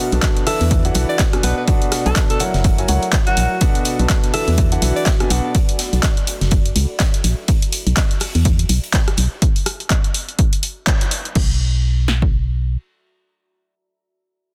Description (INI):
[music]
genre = piano house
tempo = 124 BPM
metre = 4/4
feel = swing 58% on 16ths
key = B minor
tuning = A4 = 440 Hz
[part]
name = warm upright piano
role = riff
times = 0.0-5.5 s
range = B2 to A5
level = -25 LUFS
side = equal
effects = sidechain pumping, digital delay
[part]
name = deep dark ambient pad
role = texture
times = 0.0-7.5 s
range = F#4 to A5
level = -34 LUFS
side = equal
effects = none
[part]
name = organ-like FM bass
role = bass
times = 0.1-12.8 s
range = F#1 to E2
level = -19 LUFS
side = equal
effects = tube saturation, sidechain pumping
[part]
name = punchy analog drum machine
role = drums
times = 0.1-11.5 s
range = crash cymbal, handclaps, hi-hat, rim click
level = -25 LUFS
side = equal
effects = none
[part]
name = big rock drum kit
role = drums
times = 0.2-9.3 s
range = hi-hat, snare drum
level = -35 LUFS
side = equal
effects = none
[part]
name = punchy analog drum machine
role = drums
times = 0.2-12.3 s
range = kick drum, snare drum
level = -19 LUFS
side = equal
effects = none
[part]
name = clear alto saxophone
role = melody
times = 0.5-5.1 s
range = F#4 to D5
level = -28 LUFS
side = equal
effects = vintage 12-bit sampler grit, digital delay
[sound]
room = light reverb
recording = dense, heavily limited modern master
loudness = -17 LUFS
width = mono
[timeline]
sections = 0.0-11.4 A section; 11.4-14.5 B section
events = band accent 10.9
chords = 0.5 E9sus4; 1.4 Bm7; 2.6 F#7; 3.6 Bm7; 4.3 E9sus4; 5.3 Bm7; 6.5 F#7; 7.5 N.C.; 8.2 E5; 9.2 N.C.